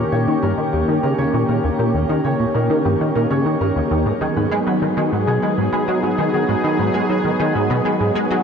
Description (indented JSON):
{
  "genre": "ambient, sequencer-driven space music",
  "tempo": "99 BPM",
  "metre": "4/4",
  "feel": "straight",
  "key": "G# harmonic minor",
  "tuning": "A4 = 442 Hz",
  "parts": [
    { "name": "sweeping resonant pad", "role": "sustained chords", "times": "0.0-8.4 s", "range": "D#3 to G#4", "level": "-20 LUFS", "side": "equal", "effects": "chorus, shimmer reverb" },
    { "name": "Celtic harp", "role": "arpeggios", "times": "0.0-8.4 s", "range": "F#4 to C#6", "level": "-26 LUFS", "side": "equal", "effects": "auto-pan, tape echo, shimmer reverb" },
    { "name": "plucky analog bass", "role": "riff", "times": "0.0-8.4 s", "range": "D#2 to G#3", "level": "-19 LUFS", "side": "equal", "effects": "ensemble chorus, tape echo, shimmer reverb" }
  ],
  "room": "wet huge ambient reverb, RT60 9.7 s",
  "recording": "dark, warm production",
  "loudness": "-16 LUFS",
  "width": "side -6 dB against mid",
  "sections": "0.0-8.4 A section",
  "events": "none",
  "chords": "0.0 D#7; 4.1 G#m7"
}